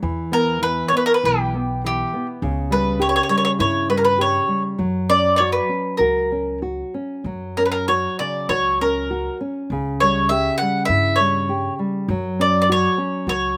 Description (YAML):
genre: fado-style ballad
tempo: 100 BPM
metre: 4/4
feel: rubato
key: unclear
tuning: A4 = 440 Hz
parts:
  - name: nylon-string guitar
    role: accompaniment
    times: 0.0-13.6 s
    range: C#3 to G4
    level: -26 LUFS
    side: equal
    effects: none
  - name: upright bass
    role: bass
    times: 0.0-13.6 s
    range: B1 to G2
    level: -29 LUFS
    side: equal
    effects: none
  - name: bowl-back mandolin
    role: melody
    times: 0.3-13.6 s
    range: G4 to F#5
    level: -21 LUFS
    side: equal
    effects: none
room: little or no reverb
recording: recorded outdoors, with no room sound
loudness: -20 LUFS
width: mono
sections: 0.0-13.6 A section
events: none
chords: 0.0 Em; 2.4 C#dim; 4.8 F#; 9.7 C#dim; 12.1 F#5